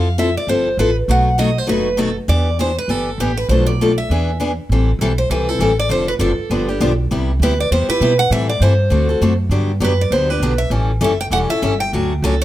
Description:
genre	acoustic string swing (jazz manouche)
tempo	199 BPM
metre	4/4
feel	swing 60% on 8ths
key	unclear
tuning	A4 = 440 Hz
part	picked steel-string acoustic guitar	melody	0.0-12.4 s	G4 to G5	-20 LUFS	right 1 dB	none
part	picked steel-string acoustic guitar	accompaniment	0.0-12.3 s	B2 to A4	-19 LUFS	left 2 dB	none
part	upright bass	bass	0.0-12.4 s	E1 to B2	-18 LUFS	right 1 dB	none
room	light reverb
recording	none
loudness	-14 LUFS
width	side -14 dB against mid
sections	0.0-4.7 A section; 4.7-12.4 B section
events	none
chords	0.0 Fmaj7; 1.1 B7; 2.3 Em7; 3.5 Bm7b5; 4.1 E7; 4.7 Am7; 5.9 Dm7; 6.5 G7; 7.1 Cmaj7; 8.3 Am7; 8.9 D7; 9.5 Gmaj7; 10.7 A7; 11.9 Dmaj7

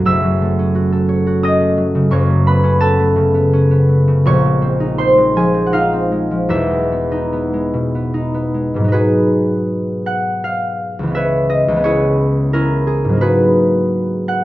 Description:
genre	classical, solo harp piece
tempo	72-90 BPM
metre	3/4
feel	rubato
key	unclear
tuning	A4 = 440 Hz
part	concert harp	solo	0.0-14.4 s	E1 to E6	-13 LUFS	equal	none
room	moderate recital hall reverb, RT60 1.6 s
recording	nothing above 7.7 kHz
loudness	-13 LUFS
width	side -16 dB against mid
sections	0.0-8.9 A section; 8.9-14.4 B section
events	none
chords	0.1 F#m7; 2.1 A69/F#; 4.3 A#m11; 6.5 Emaj7; 8.9 G#m7; 11.2 C#m7; 13.2 G#m9

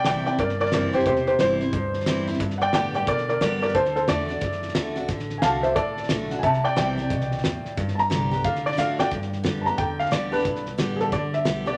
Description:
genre	rockabilly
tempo	179 BPM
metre	4/4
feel	swing 63% on 8ths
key	G major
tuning	A4 = 440 Hz
part	warm upright piano	melody	0.0-11.8 s	D4 to Bb5	-26 LUFS	equal	none
part	picked steel-string acoustic guitar	accompaniment	0.0-11.8 s	G2 to G4	-30 LUFS	equal	none
part	cloth-damped thuddy drum kit	drums	0.0-11.7 s	hi-hat, kick drum, snare drum	-32 LUFS	equal	none
part	upright bass	bass	0.1-11.8 s	E1 to B2	-36 LUFS	equal	none
room	moderate large studio reverb, RT60 1.3 s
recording	none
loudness	-24 LUFS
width	mono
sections	0.0-9.1 A section; 9.1-11.8 B section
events	upright piano solo 0.0-9.1; drum fill 8.8-9.1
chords	0.0 C; 2.4 G; 3.7 D; 6.4 C; 7.8 G; 8.4 D; 9.1 G

